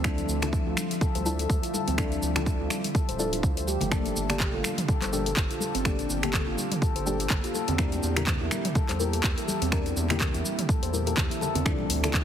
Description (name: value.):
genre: afro house.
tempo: 124 BPM.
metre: 4/4.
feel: swing 57% on 16ths.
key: D minor.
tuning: A4 = 439 Hz.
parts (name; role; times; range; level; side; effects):
ethereal airy pad; sustained chords; 0.0-12.2 s; D3 to E5; -36 LUFS; equal; ensemble chorus, built-in reverb, sidechain pumping.
handpan; arpeggios; 0.0-11.7 s; A3 to C5; -33 LUFS; equal; sidechain pumping, ping-pong delay.
deep mellow chord stab; stabs; 0.0-12.2 s; Bb3 to Bb4; -34 LUFS; left 3 dB; chorus, phaser, sidechain pumping, ping-pong delay.
round analog bass; bass; 0.0-12.2 s; D1 to E2; -31 LUFS; right 1 dB; sidechain pumping.
electronic kick drum; drums; 0.0-12.2 s; none; -27 LUFS; right 1 dB; overdrive.
house drum kit; drums; 0.0-12.2 s; finger snaps, handclaps, hi-hat, shaker, toms; -31 LUFS; equal; overdrive.
congas; percussion; 0.0-12.2 s; none; -37 LUFS; left 3 dB; none.
impact; sound effects; 11.7-12.2 s; none; -38 LUFS; equal; none.
room: light reverb.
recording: heavily compressed radio sound, multiband compression.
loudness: -24 LUFS.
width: side -9 dB against mid.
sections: 0.0-11.7 A section.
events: impact 11.7-12.2.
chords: 0.0 Dmadd9; 3.9 Gmadd9; 7.8 Edim; 11.7 Dmadd9.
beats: | 0.04 0.53 1.01 1.50 | 1.98 2.46 2.95 3.43 | 3.92 4.40 4.88 5.37 | 5.85 6.33 6.82 7.30 | 7.79 8.27 8.76 9.24 | 9.72 10.21 10.69 11.17 | 11.66 12.14.